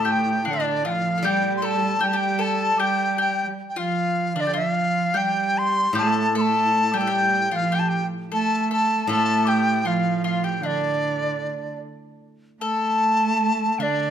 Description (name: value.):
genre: chinese traditional, Chinese chamber ensemble.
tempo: 77 BPM.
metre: 2/4.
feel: rubato.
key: unclear.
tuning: A4 = 441 Hz.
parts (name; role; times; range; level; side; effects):
reedy dizi; melody; 0.0-14.1 s; D5 to C6; -23 LUFS; equal; none.
dark cello; second line; 0.0-14.1 s; D3 to A3; -26 LUFS; right 4 dB; none.
mandolin; second line; 0.0-14.1 s; C4 to A4; -26 LUFS; left 4 dB; none.
steel-string zither; accompaniment; 0.0-3.6, 5.9-11.4 s; A2 to A4; -31 LUFS; left 1 dB; none.
room: moderate recital hall reverb, RT60 1.4 s.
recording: minimal, uncompressed stereo recording.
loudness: -20 LUFS.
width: side -9 dB against mid.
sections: 0.0-12.2 A section; 12.2-14.1 B section.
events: none.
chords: none.